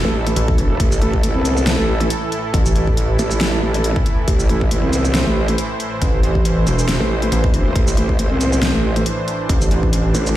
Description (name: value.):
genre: heavy wobble dubstep.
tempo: 138 BPM.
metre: 4/4.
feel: swing 55% on 16ths, half-time.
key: A minor.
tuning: A4 = 443 Hz.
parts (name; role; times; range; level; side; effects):
supersaw pad; sustained chords; 0.0-10.4 s; A2 to C5; -22 LUFS; right 1 dB; vintage 12-bit sampler grit, sidechain pumping.
growl bass; bass; 0.0-10.4 s; E1 to C2; -18 LUFS; equal; chorus, overdrive.
pulsing pluck wobble bass; bass; 0.0-3.2, 6.0-10.1 s; E1 to A1; -17 LUFS; equal; chorus, overdrive.
dubstep drum kit; drums; 0.3-10.3 s; hi-hat, shaker, snare drum; -24 LUFS; equal; overdrive.
electronic kick drum; drums; 0.5-9.9 s; none; -18 LUFS; equal; none.
room: light reverb.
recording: played on a big sound system in a bare room, large studio reverb.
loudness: -15 LUFS.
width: side -13 dB against mid.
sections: 0.0-10.4 A section.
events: none.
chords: 0.0 A5.